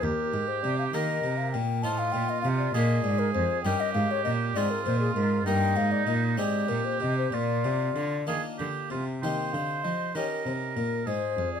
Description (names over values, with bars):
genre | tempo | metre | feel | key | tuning
classical, baroque-style sonata movement with continuo | 66 BPM (dotted quarters) | 6/8 | straight | Eb major | A4 = 440 Hz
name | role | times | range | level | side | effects
mellow baroque flute | melody | 0.0-11.6 s | Ab4 to A5 | -31 LUFS | left 8 dB | none
warm oboe | second line | 0.0-11.6 s | Eb4 to C5 | -31 LUFS | right 7 dB | none
harpsichord | accompaniment | 0.0-11.6 s | Eb2 to C5 | -32 LUFS | left 3 dB | none
rich cello | bass | 0.0-11.6 s | Eb2 to F3 | -29 LUFS | right 2 dB | none
room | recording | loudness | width
light reverb | close, detailed microphones | -25 LUFS | side -7 dB against mid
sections
0.0-9.2 A section; 9.2-11.6 A section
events
none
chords
0.0 Eb; 1.8 F7/A; 2.7 Bb; 3.6 Eb7/G; 4.6 Ab; 5.5 Eb/G; 6.4 Ab; 7.3 Bb; 9.2 Eb; 10.2 Eb7; 11.1 Ab